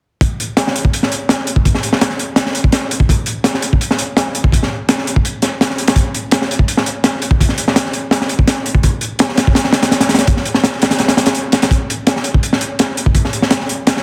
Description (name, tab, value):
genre	drum and bass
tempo	167 BPM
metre	4/4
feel	straight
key	none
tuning	none
part	crunchy breakbeat drum kit	drums	0.2-14.0 s	hi-hat, kick drum, snare drum	-15 LUFS	equal	none
room	light reverb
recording	dense, heavily limited modern master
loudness	-15 LUFS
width	mono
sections	0.2-14.0 A section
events	none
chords	none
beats	| 0.21 0.57 0.93 1.29 | 1.65 2.01 2.37 2.73 | 3.09 3.45 3.81 4.17 | 4.53 4.89 5.25 5.61 | 5.96 6.32 6.68 7.04 | 7.40 7.76 8.12 8.48 | 8.84 9.20 9.56 9.92 | 10.28 10.63 10.99 11.35 | 11.71 12.07 12.43 12.79 | 13.15 13.51 13.87